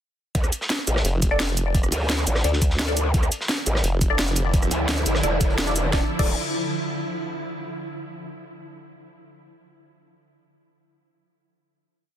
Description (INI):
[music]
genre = dark technical drum and bass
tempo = 172 BPM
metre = 4/4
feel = straight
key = D minor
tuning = A4 = 441 Hz
[part]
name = growl bass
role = bass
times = 0.3-6.4 s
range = D1 to D2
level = -23 LUFS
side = equal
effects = chorus, overdrive
[part]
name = drum and bass drum kit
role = drums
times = 0.3-6.3 s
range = crash cymbal, hi-hat, rim click, shaker, snare drum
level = -26 LUFS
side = equal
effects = overdrive
[part]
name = electronic kick drum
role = drums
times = 0.3-6.3 s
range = none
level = -22 LUFS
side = equal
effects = overdrive
[part]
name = crunchy breakbeat drum kit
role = drums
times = 0.4-5.8 s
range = hi-hat, snare drum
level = -32 LUFS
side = equal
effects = high-pass filter on hats, high-pass filter on snare, high-pass filter on room
[part]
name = formant-sweep wobble bass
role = bass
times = 1.0-4.7 s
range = F1 to D2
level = -23 LUFS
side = equal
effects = chorus
[part]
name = filtered dub chord stab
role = stabs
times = 1.3-6.3 s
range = D4 to D5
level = -29 LUFS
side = left 2 dB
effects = phaser, wide subtle chorus, ping-pong delay
[part]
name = swarming drone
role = sustained chords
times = 3.8-6.1 s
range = D3 to E4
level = -29 LUFS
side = right 1 dB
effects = built-in reverb, sidechain pumping
[sound]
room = little or no reverb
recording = dense, heavily limited modern master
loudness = -20 LUFS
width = side -10 dB against mid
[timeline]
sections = 0.3-5.9 drop; 5.9-7.3 final chord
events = drop 0.3-5.9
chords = 0.3 Dmadd9; 5.9 D5